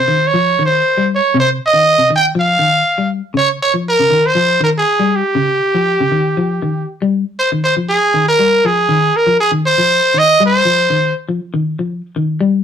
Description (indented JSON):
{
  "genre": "afrobeat",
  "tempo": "119 BPM",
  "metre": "4/4",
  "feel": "straight",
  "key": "unclear",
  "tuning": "A4 = 440 Hz",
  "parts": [
    { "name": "growling trumpet", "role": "melody", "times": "0.0-11.1 s", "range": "G4 to G5", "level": "-12 LUFS", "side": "right 1 dB", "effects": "none" },
    { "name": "clean electric guitar", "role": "arpeggios", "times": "0.0-12.6 s", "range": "C3 to G3", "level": "-17 LUFS", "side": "left 3 dB", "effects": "none" }
  ],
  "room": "moderate studio reverb, RT60 0.5 s",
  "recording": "rough rehearsal-room recording, warm saturation",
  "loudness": "-11 LUFS",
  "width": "side -8 dB against mid",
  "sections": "0.0-7.4 A section; 7.4-12.6 A section",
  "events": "none",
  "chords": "0.0 F5; 3.4 Eb9; 7.4 Ebadd9"
}